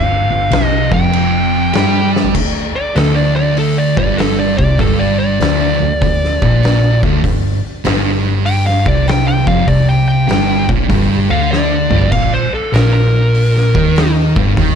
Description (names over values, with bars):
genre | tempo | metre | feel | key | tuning
stoner and doom metal | 98 BPM | 4/4 | swing 66% on 8ths | unclear | A4 = 440 Hz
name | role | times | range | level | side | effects
fuzz lead guitar | melody | 0.0-14.1 s | A4 to G5 | -19 LUFS | left 1 dB | distortion, ping-pong delay
thick fuzz guitar | riff | 0.0-14.8 s | D2 to G3 | -17 LUFS | left 8 dB | distortion
thick fuzz guitar | riff | 0.0-14.8 s | D2 to G3 | -16 LUFS | right 7 dB | distortion
clear double bass | bass | 0.0-14.8 s | F1 to G2 | -19 LUFS | equal | overdrive
oversized low-tuned drum kit | drums | 0.5-14.8 s | crash cymbal, hi-hat, kick drum, snare drum, toms | -18 LUFS | equal | none
room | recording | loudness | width
small room ambience | dark, warm production | -11 LUFS | side -7 dB against mid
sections
0.0-2.3 A section; 2.3-14.8 B section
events
drum fill 2.0-2.3, 11.5-12.1; lead electric guitar solo 2.3-14.8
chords
0.0 G5; 2.3 Bb6/D; 7.2 G5; 12.1 Bb5